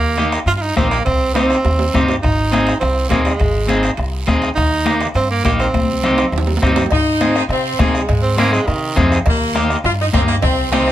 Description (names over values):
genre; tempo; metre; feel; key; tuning
latin, cumbia; 205 BPM; 4/4; straight; unclear; A4 = 439 Hz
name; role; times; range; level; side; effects
edgy tenor saxophone; second line; 0.0-9.2 s; C3 to F4; -19 LUFS; right 3 dB; none
upright bass; bass; 0.0-10.9 s; Ab1 to C3; -20 LUFS; equal; none
electric guitar at the edge of break-up; accompaniment; 0.2-10.9 s; Bb3 to Ab4; -18 LUFS; equal; none
bombo; percussion; 0.2-10.9 s; none; -21 LUFS; left 1 dB; none
congas; percussion; 0.2-10.9 s; none; -24 LUFS; left 5 dB; none
guiro; percussion; 0.2-10.9 s; none; -32 LUFS; right 6 dB; none
timbales and cowbell; percussion; 0.2-10.9 s; none; -26 LUFS; right 5 dB; none
warm saxophone section; melody; 6.9-10.9 s; Ab3 to F4; -18 LUFS; equal; none
room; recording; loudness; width
light reverb; none; -13 LUFS; side -13 dB against mid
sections
0.0-6.9 A section; 6.9-10.9 B section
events
tenor saxophone solo 0.0-6.9; drum fill 1.3-2.2, 5.7-6.9, 10.4-10.9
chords
0.0 Eb; 1.1 Cm; 2.2 Ab; 4.6 Eb; 5.7 Cm; 6.9 Ab; 9.3 Eb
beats
0.17 0.47 0.76 | 1.05 1.35 1.64 1.93 | 2.23 2.52 2.81 3.11 | 3.40 3.69 3.99 4.28 | 4.57 4.87 5.16 5.45 | 5.75 6.04 6.33 6.63 | 6.92 7.21 7.50 7.80 | 8.09 8.38 8.68 8.97 | 9.26 9.56 9.85 10.14 | 10.44 10.73